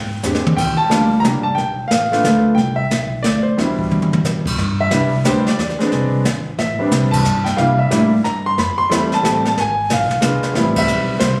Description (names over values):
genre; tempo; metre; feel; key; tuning
jazz piano trio; 180 BPM; 3/4; swing 64% on 8ths; C major; A4 = 440 Hz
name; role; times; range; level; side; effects
clear grand piano; melody; 0.0-11.4 s; B2 to C6; -20 LUFS; equal; none
upright bass; bass; 0.0-11.4 s; G1 to C3; -22 LUFS; equal; none
jazz brush drum kit; drums; 0.2-11.4 s; brushed snare drum, crash cymbal, hi-hat, kick drum, snare drum, toms; -23 LUFS; equal; none
room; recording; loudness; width
moderate studio reverb, RT60 0.9 s; recorded on a phone in the room, club reverb; -17 LUFS; mono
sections
0.0-4.6 A section; 4.6-11.4 B section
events
drum fill 0.2-0.6, 3.9-4.2; band accent 7.1, 10.7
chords
0.0 E7alt; 0.6 Ebmaj7; 1.6 G9; 2.6 Cmaj9; 4.6 Cmaj7; 5.6 E7b13; 6.6 Am11; 7.6 C7; 8.6 Fmaj9; 9.6 G#dim7; 10.6 Am7